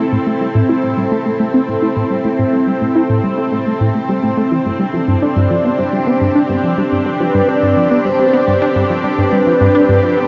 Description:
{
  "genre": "ambient, sequencer-driven space music",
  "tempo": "106 BPM",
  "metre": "4/4",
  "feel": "straight",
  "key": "unclear",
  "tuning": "A4 = 440 Hz",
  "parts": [
    { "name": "lush unison pad", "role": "sustained chords", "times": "0.0-10.3 s", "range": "C4 to A4", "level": "-18 LUFS", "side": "equal", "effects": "chorus, phaser" },
    { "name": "tight sequenced synth", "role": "riff", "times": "0.0-10.2 s", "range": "G2 to E4", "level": "-18 LUFS", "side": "equal", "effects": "chorus, tape echo" },
    { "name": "mellow horn-like synth lead", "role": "melody", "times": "5.2-10.3 s", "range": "B4 to D5", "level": "-19 LUFS", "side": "equal", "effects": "chorus, tape echo" }
  ],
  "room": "wet shimmer reverb, RT60 6.5 s",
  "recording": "nothing above 7.5 kHz",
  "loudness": "-14 LUFS",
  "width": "mono",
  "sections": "0.0-10.3 A section",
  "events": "filter sweep on synth arpeggio sound 0.0-10.3",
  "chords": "0.0 Am; 4.7 Gsus4"
}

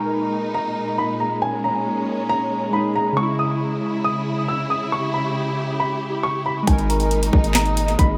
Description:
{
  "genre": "hip hop, trap",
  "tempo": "137 BPM",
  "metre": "4/4",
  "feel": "half-time",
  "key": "G# harmonic minor",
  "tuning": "A4 = 440 Hz",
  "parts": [
    { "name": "dark baby grand piano", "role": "melody", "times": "0.0-8.2 s", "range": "G#5 to E6", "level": "-26 LUFS", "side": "equal", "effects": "dub echo" },
    { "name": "warbly lo-fi synth keys", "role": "accompaniment", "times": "0.0-8.2 s", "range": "C#3 to A#4", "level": "-28 LUFS", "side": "equal", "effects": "chorus, dub echo" },
    { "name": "warm symphonic string section", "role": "sustained chords", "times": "0.0-8.2 s", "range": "A#2 to G4", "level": "-29 LUFS", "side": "equal", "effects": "none" },
    { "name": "hard-hitting 808-style bass", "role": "bass", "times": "6.7-8.2 s", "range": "G#1", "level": "-24 LUFS", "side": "equal", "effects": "none" },
    { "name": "trap drum kit", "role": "drums", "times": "6.7-8.1 s", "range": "handclaps, hi-hat, kick drum, snare drum", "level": "-21 LUFS", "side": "equal", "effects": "none" },
    { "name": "gliding portamento lead", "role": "second line", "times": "6.9-8.2 s", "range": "A#4 to D#5", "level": "-33 LUFS", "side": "equal", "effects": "chorus, dub echo" }
  ],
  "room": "light reverb",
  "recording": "echo-heavy mix",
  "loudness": "-21 LUFS",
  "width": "mono",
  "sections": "0.0-8.2 A section",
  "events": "none",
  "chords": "0.0 G#sus2; 3.2 C#m; 6.7 G#sus2"
}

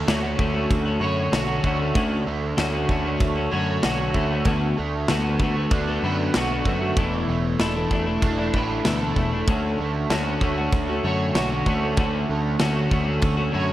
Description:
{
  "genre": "indie rock",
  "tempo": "96 BPM",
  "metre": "4/4",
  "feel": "straight",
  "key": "unclear",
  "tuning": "A4 = 440 Hz",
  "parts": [
    { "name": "overdriven semi-hollow guitar", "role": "riff", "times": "0.0-13.7 s", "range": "D3 to C#5", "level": "-26 LUFS", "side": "right 4 dB", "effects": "ensemble chorus, tape echo" },
    { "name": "growling picked electric bass", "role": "bass", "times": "0.0-13.7 s", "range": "E1 to F#2", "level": "-27 LUFS", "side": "equal", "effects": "overdrive" },
    { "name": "twelve-string electric guitar", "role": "riff", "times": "0.1-13.7 s", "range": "E2 to F#4", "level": "-25 LUFS", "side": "left 4 dB", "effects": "none" },
    { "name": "big rock drum kit", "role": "drums", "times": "0.1-13.4 s", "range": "crash cymbal, kick drum, snare drum", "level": "-26 LUFS", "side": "equal", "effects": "none" },
    { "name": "mellow tonewheel organ", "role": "sustained chords", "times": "9.5-13.7 s", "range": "C#4 to A5", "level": "-35 LUFS", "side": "equal", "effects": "none" }
  ],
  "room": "light reverb, small room ambience",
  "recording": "none",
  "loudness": "-20 LUFS",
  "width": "side -14 dB against mid",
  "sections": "0.0-13.7 A section",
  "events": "none",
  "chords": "0.0 Dmaj7; 4.5 Bm7/D; 7.0 E7sus4; 9.5 Dmaj7"
}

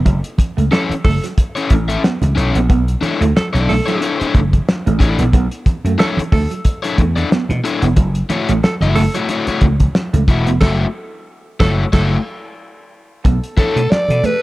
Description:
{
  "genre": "funk",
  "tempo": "91 BPM",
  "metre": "4/4",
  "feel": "swing 56% on 16ths",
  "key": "B minor",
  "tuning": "A4 = 440 Hz",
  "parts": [
    { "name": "vintage slap bass", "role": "bass", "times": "0.0-14.2 s", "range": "E1 to B2", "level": "-16 LUFS", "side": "equal", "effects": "none" },
    { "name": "semi-hollow electric guitar", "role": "riff", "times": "0.1-14.3 s", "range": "F#3 to B3", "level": "-24 LUFS", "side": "right 6 dB", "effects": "wide subtle chorus" },
    { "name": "cloth-damped thuddy drum kit", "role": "drums", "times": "0.1-14.4 s", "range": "crash cymbal, hi-hat, kick drum, snare drum", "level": "-16 LUFS", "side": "equal", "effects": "none" },
    { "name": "congas", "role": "percussion", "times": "0.1-14.4 s", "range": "none", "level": "-24 LUFS", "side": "right 2 dB", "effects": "none" },
    { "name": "breathy tenor saxophone", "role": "second line", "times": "0.7-14.4 s", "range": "A4", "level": "-24 LUFS", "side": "right 2 dB", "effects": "none" },
    { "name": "crunchy overdriven guitar", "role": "accompaniment", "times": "0.7-13.8 s", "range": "A3 to E5", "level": "-21 LUFS", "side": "left 4 dB", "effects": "none" },
    { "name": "growling alto saxophone", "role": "melody", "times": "13.6-14.4 s", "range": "A4 to D5", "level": "-16 LUFS", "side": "equal", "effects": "none" }
  ],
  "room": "light reverb",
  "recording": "dark, warm production",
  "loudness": "-13 LUFS",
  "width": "side -18 dB against mid",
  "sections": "0.0-13.2 A section; 13.2-14.4 B section",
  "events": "band accent 10.6-13.2; alto saxophone solo 13.2-14.4",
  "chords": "0.0 F#m7; 2.7 Bm11; 8.0 F#m7; 13.2 Bm11"
}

